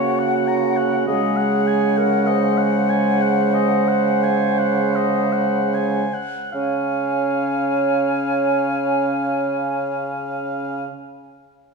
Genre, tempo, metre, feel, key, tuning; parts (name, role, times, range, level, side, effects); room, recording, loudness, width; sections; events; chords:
classical, slow romantic movement for wind quintet; 36-52 BPM; 4/4; rubato; Db major; A4 = 440 Hz
bright concert flute; melody; 0.0-10.9 s; Gb5 to Ab5; -26 LUFS; left 6 dB
warm oboe; second line; 0.0-10.8 s; Db5 to Bb5; -27 LUFS; left 3 dB
breathy clarinet; accompaniment; 0.0-10.9 s; Gb4 to Db5; -23 LUFS; right 9 dB
warm French horn; accompaniment; 0.0-10.9 s; Ab3 to Db4; -23 LUFS; right 1 dB
warm bassoon; bass; 0.0-10.9 s; Db3; -24 LUFS; right 1 dB
moderate concert hall reverb, RT60 2.3 s; small room ambience; -17 LUFS; side -4 dB against mid
0.0-6.5 A section; 6.5-11.7 B section
slowing down 0.0-6.5
0.0 Gb/Db; 1.1 Ab7/Db; 6.5 Db